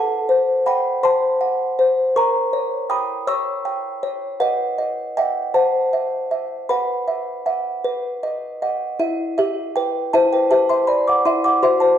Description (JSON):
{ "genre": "classical, lullaby for music box", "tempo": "53 BPM (dotted quarters)", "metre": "6/8", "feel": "straight", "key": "E minor", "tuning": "A4 = 438 Hz", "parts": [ { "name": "music box", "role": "solo", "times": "0.0-12.0 s", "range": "E4 to E6", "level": "-17 LUFS", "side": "equal", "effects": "none" } ], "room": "wet recital hall reverb, RT60 1.3 s", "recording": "dark, warm production", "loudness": "-17 LUFS", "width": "side -10 dB against mid", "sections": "0.0-9.0 A section; 9.0-12.0 B section", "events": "none", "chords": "0.0 F#dim/A; 2.2 A#dim7; 4.4 B; 5.5 C; 6.7 Bsus4; 7.8 B; 9.0 Em; 11.3 F#m7b5/E" }